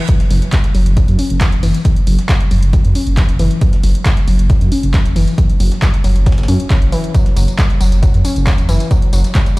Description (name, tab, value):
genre	driving peak-time techno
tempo	136 BPM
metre	4/4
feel	straight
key	unclear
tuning	A4 = 439 Hz
part	warbly dusty pluck	riff	0.1-9.6 s	E3 to C#4	-20 LUFS	left 1 dB	chorus, sidechain pumping, tape echo
part	breakbeat sampler-style drum kit	drums	0.1-9.6 s	hi-hat, snare drum	-34 LUFS	equal	none
part	electronic kick drum	drums	0.1-9.4 s	none	-13 LUFS	equal	none
part	punchy analog drum machine	drums	0.1-9.6 s	handclaps, hi-hat, tambourine	-25 LUFS	equal	sidechain pumping on hats, sidechain pumping on perc
part	dark detuned saw bass	bass	0.3-9.6 s	E1 to F#2	-14 LUFS	equal	sidechain pumping
room	digital ambience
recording	played on a big sound system in a bare room, stone room reverb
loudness	-11 LUFS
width	side -21 dB against mid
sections	0.0-9.6 A section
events	none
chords	0.0 F#5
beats	| 0.09 0.53 0.97 1.41 | 1.85 2.29 2.73 3.17 | 3.62 4.06 4.50 4.94 | 5.38 5.82 6.26 6.70 | 7.14 7.59 8.03 8.47 | 8.91 9.35